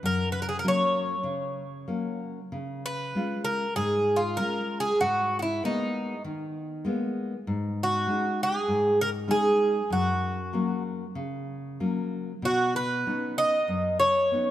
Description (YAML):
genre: fado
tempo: 96 BPM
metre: 4/4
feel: rubato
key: unclear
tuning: A4 = 439 Hz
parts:
  - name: Irish bouzouki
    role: melody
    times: 0.0-14.5 s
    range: D#4 to D#5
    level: -25 LUFS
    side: right 1 dB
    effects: none
  - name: nylon-string guitar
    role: accompaniment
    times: 0.0-14.5 s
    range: F#2 to E#4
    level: -30 LUFS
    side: left 2 dB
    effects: none
room: moderate concert hall reverb, RT60 2.4 s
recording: close, detailed microphones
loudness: -25 LUFS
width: side -12 dB against mid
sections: 0.0-14.5 A section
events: none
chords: 0.0 F#; 2.5 C#; 5.0 G#madd9; 7.5 C#sus2/G#; 9.9 F#; 12.4 Badd9